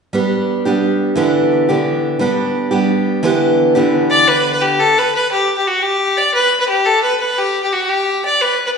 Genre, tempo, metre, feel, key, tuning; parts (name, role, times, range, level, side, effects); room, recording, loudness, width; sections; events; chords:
celtic folk; 116 BPM (dotted quarters); 6/8; straight; G major; A4 = 439 Hz
picked steel-string acoustic guitar; accompaniment; 0.1-4.8 s; D3 to G4; -14 LUFS; right 2 dB
bright fiddle; melody; 4.1-8.7 s; F#4 to D5; -13 LUFS; left 1 dB
wet recital hall reverb, RT60 1.3 s; recorded in a church or concert hall, nothing above 10.6 kHz; -13 LUFS; side -5 dB against mid
0.1-4.3 A section; 4.3-8.8 B section
0.1 G; 1.2 Em7; 2.2 G; 3.2 Em7; 4.3 N.C.